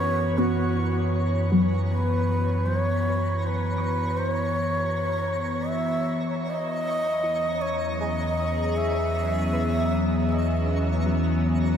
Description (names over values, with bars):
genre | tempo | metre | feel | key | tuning
ambient | 79 BPM | 3/4 | straight | F# mixolydian | A4 = 440 Hz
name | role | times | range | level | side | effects
breathy bright long shakuhachi | melody | 0.0-10.9 s | F#4 to E5 | -28 LUFS | equal | diffuse ambient delay
evolving wavetable pad | sustained chords | 0.0-11.8 s | E3 to C#5 | -28 LUFS | left 1 dB | phaser, built-in reverb
soft round pluck | arpeggios | 0.0-11.8 s | F#3 to C#6 | -30 LUFS | left 2 dB | lush chorus, diffuse ambient delay
round analog bass | bass | 0.0-11.8 s | E2 to F#2 | -27 LUFS | equal | none
twinkling granular texture | texture | 0.0-11.8 s | C#5 to A#5 | -38 LUFS | right 1 dB | built-in reverb
organ-like drone | drone | 7.9-11.8 s | F#3 to C#4 | -32 LUFS | right 1 dB | ensemble chorus, built-in reverb
room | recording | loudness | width
wet shimmer reverb, RT60 8.9 s | none | -22 LUFS | side -8 dB against mid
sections
0.0-11.8 A section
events
fade-in on synth texture 0.0-11.8; fade-out on synth pluck 0.0-11.8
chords
0.0 F#7sus4; 6.5 Emaj7